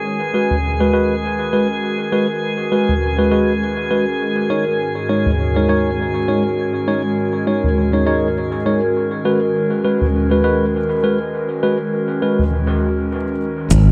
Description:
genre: ambient dub.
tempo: 101 BPM.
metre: 4/4.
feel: swing 57% on 16ths.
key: G# minor.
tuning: A4 = 439 Hz.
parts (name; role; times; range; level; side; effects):
warbly tape-like pad; sustained chords; 0.0-13.9 s; G#2 to A#4; -22 LUFS; equal; chorus, built-in reverb, phaser.
drifting glass-harmonics texture; texture; 0.0-12.5 s; G#4 to G#5; -29 LUFS; equal; chorus, built-in reverb.
tine electric piano; stabs; 0.3-12.4 s; G#3 to C#5; -22 LUFS; equal; vintage 12-bit sampler grit, low-pass filter, dub echo.
toms and shaker; drums; 0.5-13.8 s; none; -24 LUFS; equal; low-pass filter on toms, low-pass filter on snare, low-pass filter on perc, low-pass filter on room.
modern bright fingered electric bass; bass; 13.7-13.9 s; G#1; -12 LUFS; equal; none.
electronic kick drum; drums; 13.7-13.8 s; none; -20 LUFS; equal; none.
room: moderate echo chamber reverb, RT60 1.5 s, small room ambience.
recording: none.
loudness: -18 LUFS.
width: mono.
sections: 0.0-13.7 A section.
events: filter sweep on drum 0.0-13.7; filter sweep on ambient pad 0.0-13.7.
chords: 0.0 G#m7; 4.2 D#7sus4/G#; 9.0 G#m7.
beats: 0.04 0.64 1.23 | 1.83 2.42 3.02 3.61 | 4.20 4.80 5.39 5.99 | 6.58 7.17 7.77 8.36 | 8.96 9.55 10.14 10.74 | 11.33 11.93 12.52 13.12 | 13.71.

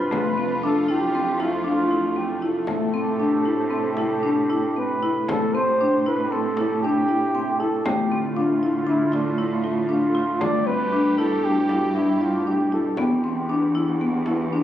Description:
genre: contemporary instrumental, chamber music in an uneven meter.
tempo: 117 BPM.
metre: 5/4.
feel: straight.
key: A minor.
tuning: A4 = 440 Hz.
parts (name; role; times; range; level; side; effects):
breathy flugelhorn; melody; 0.0-13.5 s; D4 to D5; -25 LUFS; right 2 dB; none.
phased analog pad; sustained chords; 0.0-14.6 s; B2 to G4; -30 LUFS; right 1 dB; phaser, chorus.
rich cello; bass; 0.0-14.6 s; E2 to A2; -30 LUFS; right 4 dB; none.
marimba with medium mallets; arpeggios; 0.1-14.6 s; A3 to F4; -22 LUFS; left 2 dB; none.
frame drum; percussion; 0.1-14.5 s; none; -32 LUFS; equal; none.
room: light reverb.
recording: recorded on a phone in the room, club reverb, compression.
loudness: -20 LUFS.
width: side -11 dB against mid.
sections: 0.0-5.3 A section; 5.3-14.6 B section.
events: none.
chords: 0.1 F; 2.7 Am7; 7.9 Dm/A; 10.4 Gadd9; 13.0 Em.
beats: | 0.12 0.63 1.14 1.65 2.16 | 2.67 3.19 3.71 4.23 4.75 | 5.28 5.80 6.32 6.83 7.35 | 7.86 8.37 8.88 9.40 9.91 | 10.42 10.93 11.44 11.96 12.47 | 12.98 13.49 14.01 14.53.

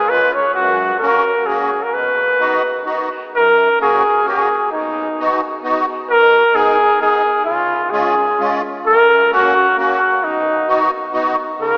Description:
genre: alpine folk, alpine dance band.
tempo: 131 BPM.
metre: 3/4.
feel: swing 53% on 8ths.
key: B major, F# major from 3.3 s.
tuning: A4 = 443 Hz.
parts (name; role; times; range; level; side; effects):
warm flugelhorn; melody; 0.0-11.8 s; D#4 to C#5; -13 LUFS; equal; none.
musette accordion; accompaniment; 0.1-11.8 s; F#2 to G#4; -19 LUFS; equal; none.
room: wet cathedral reverb, RT60 4.8 s.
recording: recorded in a church or concert hall, small speaker sound.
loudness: -12 LUFS.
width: side -29 dB against mid.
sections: 0.0-3.3 A section; 3.3-11.8 B section.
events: none.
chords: 0.0 C#7; 0.6 F#; 1.9 B; 3.3 F#add9; 4.7 B; 6.1 G#m/B; 7.5 C#; 8.9 F#; 10.2 B.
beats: 0.11 | 0.57 1.02 1.48 | 1.94 2.41 2.87 | 3.34 3.81 4.27 | 4.73 5.19 5.64 | 6.09 6.55 7.00 | 7.46 7.93 8.39 | 8.86 9.32 9.78 | 10.24 10.69 11.15 | 11.61.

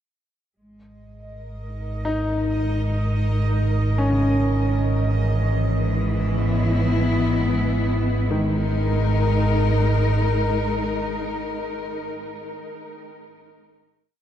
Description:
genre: dark ambient drone.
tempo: 62 BPM.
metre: 4/4.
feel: straight.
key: G# minor.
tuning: A4 = 442 Hz.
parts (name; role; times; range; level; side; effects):
clear studio cello section; sustained chords; 0.6-12.1 s; G#2 to A#4; -25 LUFS; left 2 dB; none.
deep rumbling drone; drone; 1.4-11.8 s; G#1 to G#2; -22 LUFS; right 1 dB; built-in reverb, wide subtle chorus.
bubbling stepped-filter texture; texture; 1.2-8.3 s; D#5; -36 LUFS; right 4 dB; chorus, built-in reverb.
bright concert grand piano; arpeggios; 2.0-14.2 s; C#3 to D#4; -28 LUFS; left 1 dB; diffuse ambient delay.
room: moderate huge ambient reverb, RT60 7.8 s.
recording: dark, warm production.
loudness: -19 LUFS.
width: side -10 dB against mid.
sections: 0.6-8.3 A section; 8.3-12.2 final chord.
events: fade-in on cello section 0.6-8.3; fade-in on synth texture 0.6-8.3.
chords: 0.6 G#sus2; 4.4 E/G#; 8.3 G#sus2.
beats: | 0.57 1.53 2.50 3.47 | 4.44 5.41 6.37 7.34 | 8.31 9.28 10.24 11.21.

